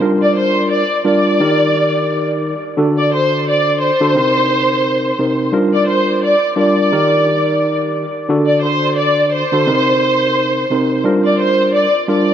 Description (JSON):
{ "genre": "hip hop", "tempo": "87 BPM", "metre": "4/4", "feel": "swing 56% on 16ths", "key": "G minor", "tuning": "A4 = 440 Hz", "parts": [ { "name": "mellow tine electric piano", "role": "accompaniment", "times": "0.0-12.3 s", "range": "C3 to Bb4", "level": "-16 LUFS", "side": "equal", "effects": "medium stereo tremolo, cassette tape, high-pass filter, low-pass filter, dub echo" }, { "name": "rich studio violin section", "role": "melody", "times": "0.2-12.3 s", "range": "C5 to D5", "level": "-15 LUFS", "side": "equal", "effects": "high-pass filter, low-pass filter, dub echo" } ], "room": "moderate plate reverb, RT60 3.4 s", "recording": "echo-heavy mix", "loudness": "-12 LUFS", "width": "side -9 dB against mid", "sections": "0.0-5.5 A section; 5.5-12.3 A section", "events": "none", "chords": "0.0 Gm7; 1.4 Eb; 2.8 D; 4.2 Cm7; 5.5 Gm7; 6.9 Eb; 8.3 D; 9.7 Cm7; 11.1 Gm7", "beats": "| 0.02 0.71 1.40 2.09 | 2.78 3.47 4.16 4.85 | 5.54 6.23 6.92 7.61 | 8.30 8.99 9.68 10.37 | 11.05 11.74" }